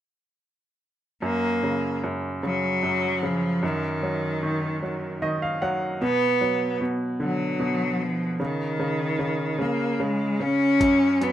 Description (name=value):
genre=six-eight pop ballad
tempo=50 BPM (dotted quarters)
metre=6/8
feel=straight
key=F# major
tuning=A4 = 440 Hz
part: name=clear cello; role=melody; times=1.2-11.3 s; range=D#3 to C#4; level=-24 LUFS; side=equal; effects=none
part: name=bright upright piano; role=accompaniment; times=1.2-11.3 s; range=F#2 to F#5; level=-27 LUFS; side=right 1 dB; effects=none
part: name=dusty soul sampler-style drum kit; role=drums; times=10.8-11.3 s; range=hi-hat, kick drum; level=-29 LUFS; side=equal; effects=none
room=moderate small room reverb, RT60 0.5 s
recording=rough home demo mix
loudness=-22 LUFS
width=side -12 dB against mid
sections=1.2-11.3 A section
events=upright piano fill 4.8-6.0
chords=1.2 F#; 3.6 D#m/F#; 6.0 Bm; 8.4 N.C.; 10.8 F#5